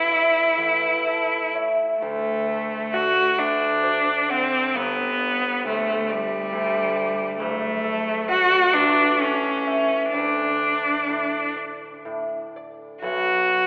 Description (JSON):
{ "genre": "classical, romantic duo for cello and harp", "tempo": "40-46 BPM (dotted quarters)", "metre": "6/8", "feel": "rubato", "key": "D major", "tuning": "A4 = 440 Hz", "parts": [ { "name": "clear cello", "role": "melody", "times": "0.0-13.7 s", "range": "G3 to F#4", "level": "-20 LUFS", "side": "equal", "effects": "none" }, { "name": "concert harp", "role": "accompaniment", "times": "0.0-13.7 s", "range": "F#1 to G5", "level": "-25 LUFS", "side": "equal", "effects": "none" } ], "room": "wet church reverb, RT60 2.9 s", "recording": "recorded in a church or concert hall, telephone sound", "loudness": "-19 LUFS", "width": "side -36 dB against mid", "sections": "0.0-13.0 A section", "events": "none", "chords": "0.0 Asus4; 0.6 A; 2.0 D; 3.4 D7; 4.8 Gmaj7; 7.4 D/F#; 8.7 A7; 10.1 D5; 13.0 Bm" }